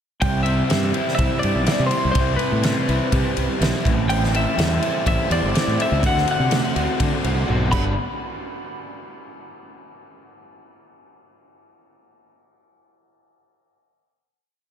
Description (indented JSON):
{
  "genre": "indie rock",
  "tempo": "124 BPM",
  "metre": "4/4",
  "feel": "straight",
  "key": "unclear",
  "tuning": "A4 = 440 Hz",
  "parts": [
    { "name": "twelve-string electric guitar", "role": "melody", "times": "0.2-7.9 s", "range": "B4 to B5", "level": "-25 LUFS", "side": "left 1 dB", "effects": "wide subtle chorus, diffuse ambient delay" },
    { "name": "overdriven electric guitar", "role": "riff", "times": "0.2-7.9 s", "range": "G2 to F#4", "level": "-27 LUFS", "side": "right 5 dB", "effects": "lush chorus, diffuse ambient delay" },
    { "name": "raw garage guitar", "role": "riff", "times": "0.2-7.9 s", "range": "G2 to F#4", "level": "-28 LUFS", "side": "left 7 dB", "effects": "overdrive, lush chorus" },
    { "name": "fuzz fingered electric bass", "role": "bass", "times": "0.2-8.0 s", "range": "G1 to D3", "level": "-23 LUFS", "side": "equal", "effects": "overdrive" },
    { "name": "loose indie drum kit", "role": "drums", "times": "0.2-7.8 s", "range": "crash cymbal, kick drum, ride cymbal, snare drum, toms", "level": "-24 LUFS", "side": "equal", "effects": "none" },
    { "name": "tonewheel organ", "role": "sustained chords", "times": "4.1-8.0 s", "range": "G3 to C6", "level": "-35 LUFS", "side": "right 2 dB", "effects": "none" }
  ],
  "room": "moderate cathedral reverb, RT60 5.2 s",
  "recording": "dreamy mix soaked in reverb",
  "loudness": "-18 LUFS",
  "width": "side -8 dB against mid",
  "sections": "0.2-8.0 pre-chorus; 8.0-9.9 final hit",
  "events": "drum fill 7.5-8.0",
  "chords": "0.2 Cmaj7; 3.9 Am7; 6.0 D7; 7.7 Gmaj7; 8.0 N.C."
}